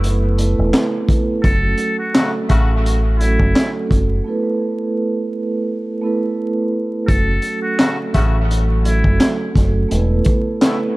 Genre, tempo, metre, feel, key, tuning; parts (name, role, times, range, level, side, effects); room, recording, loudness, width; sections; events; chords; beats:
hip hop, boom-bap hip-hop; 85 BPM; 4/4; swing 56% on 16ths; F# minor; A4 = 441 Hz
vibraphone with soft mallets; accompaniment; 0.0-11.0 s; F#3 to B4; -20 LUFS; right 2 dB; cassette tape, high-pass filter, low-pass filter
deep dub fingered electric bass; bass; 0.0-10.2 s; E1 to A1; -16 LUFS; equal
crunchy breakbeat drum kit; drums; 0.0-10.8 s; handclaps, hi-hat, kick drum, snare drum; -17 LUFS; equal
trumpet with metal mute; melody; 1.4-9.4 s; E4 to A4; -24 LUFS; equal; high-pass filter, low-pass filter, tape echo
warm horn section; stabs; 2.2-2.7, 7.8-10.8 s; B2 to F#4; -26 LUFS; left 2 dB; high-pass filter, low-pass filter, tape echo
light reverb, small room ambience; dark, warm production, vinyl crackle; -15 LUFS; side -20 dB against mid
0.0-11.0 A section
break 4.3-7.1
0.0 Esus4; 1.4 F#m; 4.3 Esus4; 7.1 F#m; 9.9 Esus4
0.03 0.73 | 1.44 2.15 2.85 3.56 | 4.26 4.97 5.67 6.38 | 7.09 7.79 8.50 9.20 | 9.91 10.62